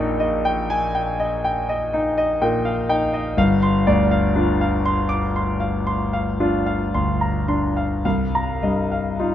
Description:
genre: classical, impressionist solo piano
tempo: 35-41 BPM (dotted quarters)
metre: 9/8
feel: rubato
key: unclear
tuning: A4 = 438 Hz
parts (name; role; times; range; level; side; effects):
- clear concert grand piano; solo; 0.0-9.3 s; G1 to D6; -18 LUFS; left 1 dB; none
room: moderate large studio reverb, RT60 1.3 s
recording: close, detailed microphones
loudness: -18 LUFS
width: side -10 dB against mid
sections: 0.0-9.3 A section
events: none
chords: 0.0 Ebmaj9/Bb; 3.4 G7sus4; 8.0 Cm7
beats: 0.43 1.91 | 3.37 4.85 6.39 | 8.04

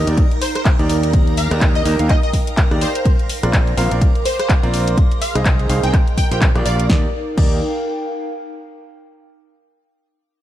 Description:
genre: piano house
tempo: 125 BPM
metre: 4/4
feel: swing 58% on 16ths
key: Eb major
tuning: A4 = 440 Hz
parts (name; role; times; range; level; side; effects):
- string machine, violins; sustained chords; 0.0-6.9 s; Bb4 to Bb5; -32 LUFS; equal; ensemble chorus, sidechain pumping
- bright grand piano; riff; 0.0-7.6 s; Bb3 to Ab5; -24 LUFS; right 1 dB; sidechain pumping, dub echo
- growling fingered electric bass; bass; 0.0-7.6 s; Bb1 to Eb2; -19 LUFS; equal; overdrive, sidechain pumping
- warbly tape-like pad; texture; 0.0-8.8 s; Eb4 to D6; -26 LUFS; right 2 dB; chorus, built-in reverb, sidechain pumping
- house drum kit; drums; 0.1-7.5 s; crash cymbal, handclaps, hi-hat, rim click, snare drum; -24 LUFS; equal; studio reverb
- electronic kick drum; drums; 0.2-7.5 s; none; -16 LUFS; equal; studio reverb
- plucky unison lead; melody; 0.4-6.9 s; C5 to G5; -25 LUFS; equal; ensemble chorus, dub echo
room: digital ambience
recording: none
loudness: -14 LUFS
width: side -12 dB against mid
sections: 0.0-6.9 A section; 6.9-8.8 B section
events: drop 0.0-6.9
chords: 0.0 Ebmaj7; 3.1 Bbadd9; 5.0 Ab; 5.9 Bb6; 6.9 Ebmaj7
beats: 0.17 0.66 | 1.14 1.61 2.10 2.58 | 3.06 3.54 4.01 4.50 | 4.97 5.46 5.93 6.42 | 6.89 7.38 7.86 8.34

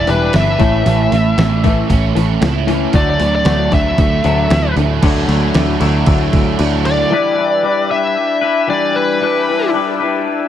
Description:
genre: indie rock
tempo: 115 BPM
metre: 4/4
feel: straight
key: E dorian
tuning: A4 = 440 Hz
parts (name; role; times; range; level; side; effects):
- biting lead guitar; melody; 0.0-9.7 s; B4 to E5; -17 LUFS; left 2 dB; overdrive, analog delay
- biting overdriven guitar; riff; 0.0-7.1 s; A2 to B4; -19 LUFS; right 8 dB; ensemble chorus, analog delay
- twangy electric guitar; riff; 0.0-10.5 s; A2 to B4; -18 LUFS; left 6 dB; lush chorus, analog delay
- picked electric bass; bass; 0.0-7.0 s; E1 to D2; -16 LUFS; equal; none
- clean 12-bit digital drum machine; drums; 0.1-7.0 s; crash cymbal, hi-hat, kick drum, snare drum; -18 LUFS; equal; analog delay
- sweeping resonant pad; sustained chords; 7.1-10.5 s; D5 to E6; -26 LUFS; right 1 dB; chorus
room: digital ambience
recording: echo-heavy mix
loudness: -12 LUFS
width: side -10 dB against mid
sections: 0.0-5.0 A section; 5.0-7.1 B section; 7.1-10.5 C section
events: lead electric guitar solo 0.0-5.0; kick and snare drop out 6.6-7.1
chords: 0.0 Em7; 0.6 A; 2.9 Dadd9; 7.1 Em7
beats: 0.33 | 0.85 1.37 1.89 2.42 | 2.94 3.46 3.98 4.50 | 5.03 5.55 6.07 6.59 | 7.12 7.64 8.16 8.69 | 9.21 9.74 10.26

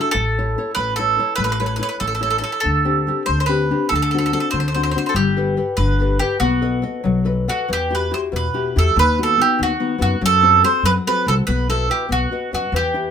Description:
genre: italian folk, Italian serenade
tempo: 95 BPM (dotted quarters)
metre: 6/8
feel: straight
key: E harmonic minor from 7.7 s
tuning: A4 = 440 Hz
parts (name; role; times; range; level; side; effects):
- bowl-back mandolin; melody; 0.0-13.1 s; F#4 to C5; -19 LUFS; right 4 dB; none
- nylon-string guitar; accompaniment; 0.0-13.1 s; B2 to F#5; -22 LUFS; left 5 dB; none
- upright bass; bass; 0.1-13.1 s; G1 to F#2; -21 LUFS; equal; none
room: light reverb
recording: minimal, uncompressed stereo recording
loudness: -16 LUFS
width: side -8 dB against mid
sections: 0.0-7.7 A section; 7.7-13.1 B section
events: nylon-string guitar fill 7.1-7.7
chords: 0.1 A; 2.6 D7sus4; 3.9 D7; 5.2 Gadd9; 6.4 B7; 7.7 Emadd9; 9.0 B/D#; 10.2 F#dim; 11.5 Bsus4; 12.1 B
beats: | 0.14 0.76 | 1.38 2.01 | 2.65 3.28 | 3.91 4.54 | 5.17 5.79 | 6.42 7.06 | 7.70 8.34 | 8.97 9.59 | 10.21 10.84 | 11.46 12.09 | 12.73

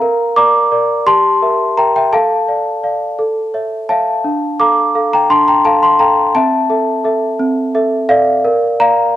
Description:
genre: classical, lullaby for celesta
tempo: 57 BPM (dotted quarters)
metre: 6/8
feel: straight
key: D minor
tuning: A4 = 442 Hz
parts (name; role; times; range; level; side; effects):
- celesta; solo; 0.0-9.2 s; C4 to D6; -11 LUFS; equal; none
room: moderate spring reverb, RT60 1.7 s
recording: none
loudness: -11 LUFS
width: side -13 dB against mid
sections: 0.0-9.2 A section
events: none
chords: 0.0 Bb; 1.1 Edim/G; 2.1 Dm/A; 3.2 A; 4.2 Dm; 6.3 Am/C; 8.4 Bb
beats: | 0.02 1.07 | 2.12 3.18 | 4.24 5.30 | 6.35 7.39 | 8.45

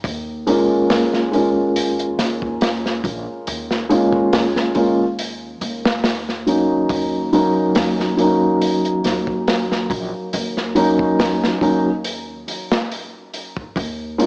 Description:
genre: trip hop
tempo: 70 BPM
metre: 4/4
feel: swing 54% on 16ths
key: Eb minor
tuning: A4 = 439 Hz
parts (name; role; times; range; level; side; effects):
- upright bass; bass; 0.0-14.3 s; Bb1 to Eb2; -29 LUFS; equal; none
- crunchy breakbeat drum kit; drums; 0.0-14.3 s; hi-hat, kick drum, snare drum; -21 LUFS; equal; vintage 12-bit sampler grit, cassette tape
- felt-muted upright piano; accompaniment; 0.5-14.3 s; Gb3 to F4; -17 LUFS; equal; harmonic tremolo, cassette tape, tape echo
room: moderate spring reverb, RT60 2.0 s, small room ambience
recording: home recording on cassette, small speaker sound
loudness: -16 LUFS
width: side -39 dB against mid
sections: 0.0-14.3 A section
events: none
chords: 0.0 Bbm7; 6.9 Ebm7; 13.8 Bbm7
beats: | 0.05 0.90 1.76 2.62 | 3.48 4.33 5.19 6.05 | 6.90 7.76 8.62 9.47 | 10.33 11.19 12.05 12.90 | 13.76

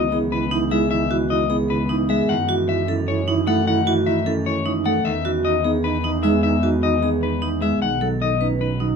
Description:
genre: classical, minimalist pattern music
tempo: 304 BPM (eighths)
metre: 7/8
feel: straight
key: unclear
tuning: A4 = 441 Hz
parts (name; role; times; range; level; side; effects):
- electric guitar at the edge of break-up; melody; 0.0-8.9 s; B4 to F#5; -24 LUFS; left 8 dB; none
- mellow wooden-headed alto flute; second line; 0.0-8.9 s; D#4 to E4; -27 LUFS; right 6 dB; none
- Celtic harp; accompaniment; 0.0-9.0 s; C#3 to C#4; -23 LUFS; left 3 dB; none
- rich double bass; bass; 0.0-9.0 s; B1 to F#2; -26 LUFS; right 4 dB; none
- vibraphone with hard mallets; arpeggios; 0.1-9.0 s; D#4 to B4; -25 LUFS; right 5 dB; none
room: little or no reverb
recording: close, detailed microphones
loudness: -18 LUFS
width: side -6 dB against mid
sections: 0.0-9.0 A section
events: none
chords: 0.0 C#m9; 2.3 F#m7; 5.1 Emaj9; 7.8 B7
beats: 0.12 0.32 0.51 0.71 | 0.91 1.10 1.30 1.50 1.70 1.89 2.09 | 2.29 2.49 2.68 2.88 3.08 3.27 3.47 | 3.67 3.87 4.07 4.26 4.46 4.66 4.85 | 5.05 5.25 5.45 5.64 5.84 6.04 6.24 | 6.43 6.63 6.83 7.03 7.22 7.42 7.62 | 7.82 8.01 8.21 8.41 8.60 8.80

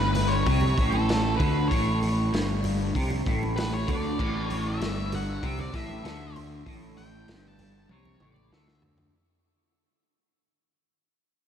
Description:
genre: psychedelic rock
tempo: 97 BPM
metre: 4/4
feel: straight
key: unclear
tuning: A4 = 440 Hz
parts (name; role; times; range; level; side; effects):
- octave-fuzz lead guitar; melody; 0.0-8.8 s; A4 to A5; -32 LUFS; equal; distortion, tape echo
- clean electric guitar; riff; 0.0-9.1 s; G2 to D3; -29 LUFS; equal; flanger, double-tracked left and right
- fuzz fingered electric bass; bass; 0.0-9.1 s; G1 to D2; -30 LUFS; equal; overdrive
- congas; percussion; 0.1-9.0 s; none; -38 LUFS; right 4 dB; none
- crunchy breakbeat drum kit; drums; 0.2-9.1 s; crash cymbal, hi-hat, kick drum, snare drum, toms; -31 LUFS; equal; none
room: moderate huge ambient reverb, RT60 4.7 s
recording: dreamy mix soaked in reverb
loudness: -24 LUFS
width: side -9 dB against mid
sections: 0.0-9.1 A section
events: fade-out 0.0-9.1; lead electric guitar solo 0.0-9.1; drum fill 7.9-9.1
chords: none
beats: 0.47 1.09 | 1.71 2.33 2.95 3.57 | 4.19 4.81 5.43 6.04 | 6.66 7.28 7.90 8.52

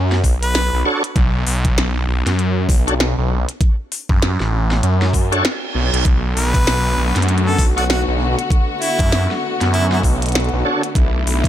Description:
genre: glitch hop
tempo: 98 BPM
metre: 4/4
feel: swing 60% on 16ths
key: B minor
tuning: A4 = 439 Hz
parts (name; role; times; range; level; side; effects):
- phased detuned saw bass; bass; 0.0-11.5 s; A1 to F#2; -17 LUFS; equal; phaser
- glitchy drum kit; drums; 0.1-11.5 s; hi-hat, snare drum; -23 LUFS; equal; none
- electronic kick drum; drums; 0.2-11.5 s; none; -16 LUFS; equal; overdrive
- bright harmonica; melody; 0.4-0.9, 6.4-10.0 s; E4 to B4; -23 LUFS; equal; digital delay
- bright tonewheel organ; stabs; 0.9-10.8 s; D4 to C#5; -22 LUFS; equal; overdrive, chorus vibrato, slow rotary speaker, sidechain pumping, digital delay
- reverse cymbal; sound effects; 5.1-6.1 s; none; -26 LUFS; right 6 dB; none
- warm studio string section; sustained chords; 6.0-11.5 s; D3 to F#4; -23 LUFS; left 1 dB; sidechain pumping
room: little or no reverb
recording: none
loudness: -15 LUFS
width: side -11 dB against mid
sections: 0.0-11.5 A section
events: reverse cymbal 5.1-6.1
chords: 0.0 Bm7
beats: 0.55 | 1.16 1.77 2.38 3.00 | 3.61 4.22 4.83 5.45 | 6.06 6.67 7.28 7.89 | 8.51 9.12 9.73 10.34 | 10.96

